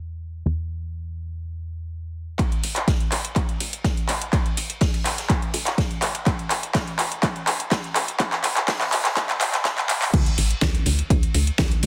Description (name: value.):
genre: progressive house.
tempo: 124 BPM.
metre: 4/4.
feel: straight.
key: unclear.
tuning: A4 = 440 Hz.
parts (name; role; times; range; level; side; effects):
plucky analog bass; bass; 0.0-11.9 s; A1 to E2; -29 LUFS; equal; sidechain pumping, high-pass filter.
deep house drum kit; drums; 2.4-11.9 s; crash cymbal, handclaps, hi-hat, snare drum; -26 LUFS; equal; overdrive, high-pass filter on snare, high-pass filter on hats, high-pass filter on cymbals.
electronic kick drum; drums; 2.4-11.7 s; none; -25 LUFS; equal; overdrive.
open jazz drum kit; drums; 2.4-11.9 s; hi-hat, ride cymbal, snare drum; -37 LUFS; equal; sidechain pumping on cymbals, high-pass filter on cymbals, sidechain pumping on hats, high-pass filter on hats, high-pass filter on snare, high-pass filter on room.
room: moderate digital room reverb, RT60 1.2 s.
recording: dense, heavily limited modern master, high-pass filter.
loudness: -23 LUFS.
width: mono.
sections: 0.0-2.4 A section; 2.4-10.1 B section; 10.1-11.9 C section.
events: build-up 2.4-10.1; drum fill 2.4-10.1; drop 10.1-11.9.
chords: none.